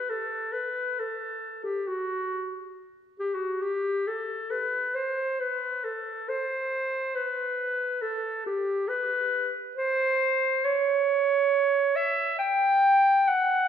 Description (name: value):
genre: classical, free, expressive piece for unaccompanied clarinet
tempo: 68 BPM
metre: 4/4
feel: rubato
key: unclear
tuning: A4 = 443 Hz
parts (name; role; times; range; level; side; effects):
- clear clarinet; solo; 0.0-13.7 s; F#4 to G5; -24 LUFS; equal; none
room: wet recital hall reverb, RT60 1.8 s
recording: heard from further back in the room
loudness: -24 LUFS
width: side -8 dB against mid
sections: 0.0-13.7 A section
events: none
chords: none